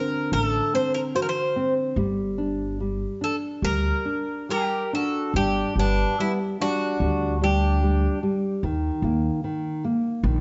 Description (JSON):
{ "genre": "fado-style ballad", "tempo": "73 BPM", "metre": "4/4", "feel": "rubato", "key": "G harmonic minor", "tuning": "A4 = 439 Hz", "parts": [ { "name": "Greek bouzouki", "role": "melody", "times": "0.0-8.2 s", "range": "D4 to C5", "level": "-28 LUFS", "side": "equal", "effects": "none" }, { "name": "nylon-string guitar", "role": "accompaniment", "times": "0.0-10.4 s", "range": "D3 to F#4", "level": "-29 LUFS", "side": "equal", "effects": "none" }, { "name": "upright bass", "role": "bass", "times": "0.3-10.4 s", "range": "G1 to Eb2", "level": "-27 LUFS", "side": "equal", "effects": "none" }, { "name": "mellow accordion", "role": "second line", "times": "4.5-8.2 s", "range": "B3 to G4", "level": "-32 LUFS", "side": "equal", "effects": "none" } ], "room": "moderate recital hall reverb, RT60 1.4 s", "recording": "nothing above 7.8 kHz", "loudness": "-24 LUFS", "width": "mono", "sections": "0.0-5.3 A section; 5.3-10.4 B section", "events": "none", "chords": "0.0 D7; 2.0 G5; 8.6 Eb5" }